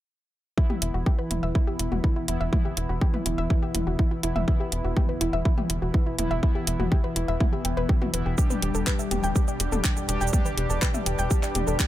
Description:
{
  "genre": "melodic techno",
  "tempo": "123 BPM",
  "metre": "4/4",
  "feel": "straight",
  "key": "E minor",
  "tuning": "A4 = 440 Hz",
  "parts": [
    { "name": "woody wave-folded pluck", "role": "arpeggios", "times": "0.6-11.9 s", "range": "E4 to G5", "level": "-32 LUFS", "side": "left 1 dB", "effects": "chorus, sidechain pumping, ping-pong delay" },
    { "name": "analog synth brass", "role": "stabs", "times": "0.6-11.9 s", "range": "E3 to G4", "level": "-31 LUFS", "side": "left 1 dB", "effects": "chorus, sidechain pumping, ping-pong delay" },
    { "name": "swarming drone", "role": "drone", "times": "1.8-11.9 s", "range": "E2 to B2", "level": "-38 LUFS", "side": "left 1 dB", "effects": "none" },
    { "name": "electronic kick drum", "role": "drums", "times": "0.6-11.9 s", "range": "none", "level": "-23 LUFS", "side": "equal", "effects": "none" },
    { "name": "house drum kit", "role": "drums", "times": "0.7-11.9 s", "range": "handclaps, hi-hat, shaker, toms", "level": "-30 LUFS", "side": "left 1 dB", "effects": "none" },
    { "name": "tight sequencer bass", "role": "bass", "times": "0.8-11.8 s", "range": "E1", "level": "-29 LUFS", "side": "equal", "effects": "sidechain pumping" },
    { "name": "deep dark ambient pad", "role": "sustained chords", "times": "9.3-11.9 s", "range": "B4 to D6", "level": "-36 LUFS", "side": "right 3 dB", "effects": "chorus, built-in reverb, sidechain pumping" }
  ],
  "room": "little or no reverb",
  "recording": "none",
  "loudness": "-22 LUFS",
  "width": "side -14 dB against mid",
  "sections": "0.6-11.9 A section",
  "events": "none",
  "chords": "0.6 Em; 8.4 G/E"
}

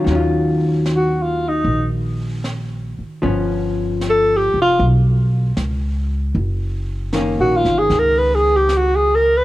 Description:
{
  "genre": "jazz ballad",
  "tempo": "77 BPM",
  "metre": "4/4",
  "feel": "swing 69% on 8ths",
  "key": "Eb minor",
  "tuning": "A4 = 441 Hz",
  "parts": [
    { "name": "vintage hollow-body jazz guitar", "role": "accompaniment", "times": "0.0-9.4 s", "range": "Eb3 to E#4", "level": "-21 LUFS", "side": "left 1 dB", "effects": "none" },
    { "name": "upright bass", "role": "bass", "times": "0.1-9.4 s", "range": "F1 to Eb2", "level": "-20 LUFS", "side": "equal", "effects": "none" },
    { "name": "jazz brush drum kit", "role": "drums", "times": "0.1-9.4 s", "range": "brushed snare drum, hi-hat, snare drum", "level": "-33 LUFS", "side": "right 1 dB", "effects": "cassette tape" },
    { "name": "breathy alto saxophone", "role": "melody", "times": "1.0-9.4 s", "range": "Eb4 to Cb5", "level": "-15 LUFS", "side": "equal", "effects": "cassette tape" }
  ],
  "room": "small room ambience",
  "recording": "home recording on cassette",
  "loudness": "-15 LUFS",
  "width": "side -16 dB against mid",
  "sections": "0.1-9.4 A section",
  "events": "alto saxophone solo 0.1-9.4",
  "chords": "0.1 Ebm9; 3.2 G7#11; 6.4 Gb6"
}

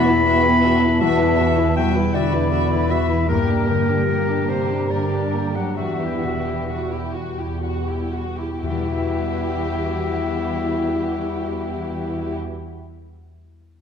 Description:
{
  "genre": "cinematic, emotional film score for orchestra",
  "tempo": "40-53 BPM (dotted quarters)",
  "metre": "6/8",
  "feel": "rubato",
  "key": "E minor",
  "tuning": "A4 = 439 Hz",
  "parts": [
    { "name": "muted symphonic violin section", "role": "melody", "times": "0.0-12.4 s", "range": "F#4 to E5", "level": "-30 LUFS", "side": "left 4 dB", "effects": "none" },
    { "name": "clear clarinet", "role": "second line", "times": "0.0-12.4 s", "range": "Bb4 to B5", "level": "-25 LUFS", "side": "left 3 dB", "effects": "none" },
    { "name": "mellow hollow large flute ensemble", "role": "second line", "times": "0.0-12.4 s", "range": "F#5 to B5", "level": "-32 LUFS", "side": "right 1 dB", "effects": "none" },
    { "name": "muted symphonic violin section", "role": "second line", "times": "0.0-12.4 s", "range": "E4 to Bb4", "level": "-33 LUFS", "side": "left 2 dB", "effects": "none" },
    { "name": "muted symphonic viola section", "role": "accompaniment", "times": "0.0-12.4 s", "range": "Bb3 to F#4", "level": "-28 LUFS", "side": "right 1 dB", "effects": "none" },
    { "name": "warm French horn section", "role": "sustained chords", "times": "0.0-12.4 s", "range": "E3 to G4", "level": "-27 LUFS", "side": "left 4 dB", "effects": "none" },
    { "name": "concert harp", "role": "arpeggios", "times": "0.0-13.2 s", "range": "E2 to F#5", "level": "-29 LUFS", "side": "left 7 dB", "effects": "none" },
    { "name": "muted symphonic cello section", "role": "bass", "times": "0.0-12.4 s", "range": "Bb2 to B3", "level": "-26 LUFS", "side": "right 2 dB", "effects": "none" },
    { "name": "muted symphonic double bass section", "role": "bass", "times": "0.0-12.4 s", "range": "E2 to G2", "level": "-26 LUFS", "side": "right 3 dB", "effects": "none" },
    { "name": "timpani", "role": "percussion", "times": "8.6-13.0 s", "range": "E2", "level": "-38 LUFS", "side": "left 1 dB", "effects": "none" }
  ],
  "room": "wet concert hall reverb, RT60 1.7 s",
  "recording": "dark, warm production",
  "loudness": "-18 LUFS",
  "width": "side -7 dB against mid",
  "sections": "0.0-8.6 A section; 8.6-11.6 B section",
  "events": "slowing down 2.1-8.6",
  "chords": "0.0 Esus2; 3.3 Gm; 5.8 Emadd9"
}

